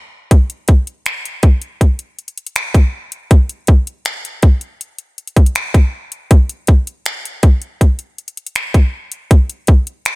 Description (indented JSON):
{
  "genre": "R&B",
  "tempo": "80 BPM",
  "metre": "4/4",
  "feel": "straight",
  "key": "none",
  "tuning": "none",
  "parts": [
    { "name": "trap drum kit", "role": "drums", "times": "0.3-10.2 s", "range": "finger snaps, hi-hat, kick drum", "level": "-11 LUFS", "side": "equal", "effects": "none" }
  ],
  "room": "little or no reverb",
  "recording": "none",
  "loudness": "-12 LUFS",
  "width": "side -23 dB against mid",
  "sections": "0.0-10.2 A section",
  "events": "break 0.0-0.3",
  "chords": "none"
}